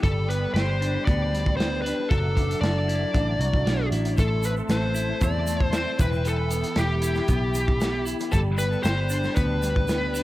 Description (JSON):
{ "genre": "psychedelic rock", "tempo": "116 BPM", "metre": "4/4", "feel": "straight", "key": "unclear", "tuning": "A4 = 440 Hz", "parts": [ { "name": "fuzz lead guitar", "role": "melody", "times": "0.0-10.2 s", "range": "G4 to D5", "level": "-28 LUFS", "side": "left 2 dB", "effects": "distortion, analog delay" }, { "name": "mellow tonewheel organ", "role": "sustained chords", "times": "0.0-10.2 s", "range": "D5 to D6", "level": "-39 LUFS", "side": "right 2 dB", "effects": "chorus vibrato, stopped rotary speaker" }, { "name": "clean electric guitar", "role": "riff", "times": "0.0-10.2 s", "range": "E3 to A4", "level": "-30 LUFS", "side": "equal", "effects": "phaser, analog delay" }, { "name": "picked electric bass", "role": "bass", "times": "0.0-10.2 s", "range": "E1 to E2", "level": "-26 LUFS", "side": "equal", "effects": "none" }, { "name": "crunchy breakbeat drum kit", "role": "drums", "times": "0.0-10.2 s", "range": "hi-hat, kick drum, snare drum", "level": "-27 LUFS", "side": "equal", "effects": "none" }, { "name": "egg shaker", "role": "percussion", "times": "4.2-10.2 s", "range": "none", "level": "-41 LUFS", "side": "right 7 dB", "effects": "none" } ], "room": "small room ambience", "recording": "echo-heavy mix", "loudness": "-21 LUFS", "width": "side -16 dB against mid", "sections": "0.0-10.2 A section", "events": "none", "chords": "0.0 G; 2.1 Dadd9/F#; 4.2 Am; 6.0 Em; 8.3 G", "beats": "| 0.02 0.54 1.06 1.58 | 2.10 2.62 3.14 3.66 | 4.18 4.70 5.21 5.73 | 6.25 6.77 7.29 7.81 | 8.33 8.85 9.37 9.89" }